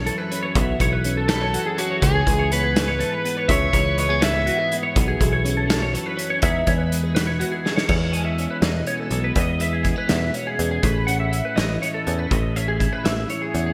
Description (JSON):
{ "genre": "math rock and midwest emo", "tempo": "82 BPM (dotted quarters)", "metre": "6/8", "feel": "straight", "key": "E major", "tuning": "A4 = 441 Hz", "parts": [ { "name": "twelve-string electric guitar", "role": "accompaniment", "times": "0.0-13.7 s", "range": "E2 to G#4", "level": "-30 LUFS", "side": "equal", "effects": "analog chorus" }, { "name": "clean electric guitar", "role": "arpeggios", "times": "0.0-13.7 s", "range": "F#4 to G#5", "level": "-28 LUFS", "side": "equal", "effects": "analog chorus, delay" }, { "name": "picked electric bass", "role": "bass", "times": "0.0-13.7 s", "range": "A1 to E2", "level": "-26 LUFS", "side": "equal", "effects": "none" }, { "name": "loose indie drum kit", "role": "drums", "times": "0.1-13.7 s", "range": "crash cymbal, hi-hat, kick drum, snare drum", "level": "-26 LUFS", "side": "equal", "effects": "gated reverb" }, { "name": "overdriven electric guitar", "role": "melody", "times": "1.3-4.7 s", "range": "F#4 to E5", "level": "-26 LUFS", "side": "equal", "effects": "delay" } ], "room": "moderate lush hall reverb, RT60 1.8 s", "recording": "bright 1980s-style digital production", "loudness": "-21 LUFS", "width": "mono", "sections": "0.0-7.9 A section; 7.9-13.7 B section", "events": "drum fill 7.7", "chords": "0.0 B9sus4; 2.0 C#m7; 5.0 B9sus4; 6.4 Emaj7; 7.9 E6; 10.8 Aadd9", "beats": "| 0.56 1.29 | 2.02 2.76 | 3.49 4.23 | 4.96 5.70 | 6.43 7.16 | 7.90 8.63 | 9.37 10.10 | 10.84 11.57 | 12.31 13.04" }